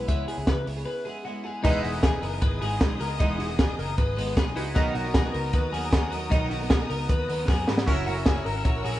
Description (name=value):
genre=jangly indie pop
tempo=154 BPM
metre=4/4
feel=straight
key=unclear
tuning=A4 = 440 Hz
part: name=chorused retro synth keys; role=accompaniment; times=0.0-9.0 s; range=B3 to B4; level=-35 LUFS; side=equal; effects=none
part: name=picked twelve-string acoustic guitar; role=accompaniment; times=0.0-9.0 s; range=B2 to A#4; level=-34 LUFS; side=right 2 dB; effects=none
part: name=twelve-string electric guitar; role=arpeggios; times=0.0-9.0 s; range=D#4 to C#5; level=-32 LUFS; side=left 2 dB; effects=none
part: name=vintage muted picked electric bass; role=bass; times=0.0-9.0 s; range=E1 to C#3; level=-32 LUFS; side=equal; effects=none
part: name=compact cocktail drum kit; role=drums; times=0.1-8.9 s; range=crash cymbal, hi-hat, kick drum, ride cymbal, snare drum, splash cymbal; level=-25 LUFS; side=equal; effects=none
part: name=clear studio string section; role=sustained chords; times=1.7-9.0 s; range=B3 to E6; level=-36 LUFS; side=left 2 dB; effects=none
room=light reverb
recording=band playing live in one room, vinyl crackle, nothing above 10.4 kHz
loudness=-23 LUFS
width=side -14 dB against mid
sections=0.0-1.6 A section; 1.6-9.0 B section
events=break 0.9-1.6; drum fill 7.5-7.9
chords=0.0 C#m7; 1.6 Emaj7; 4.8 Bmaj7; 7.9 F#7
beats=| 0.08 0.47 0.86 1.25 | 1.65 2.04 2.43 2.81 | 3.21 3.59 3.98 4.37 | 4.76 5.15 5.54 5.93 | 6.32 6.71 7.10 7.49 | 7.88 8.26 8.65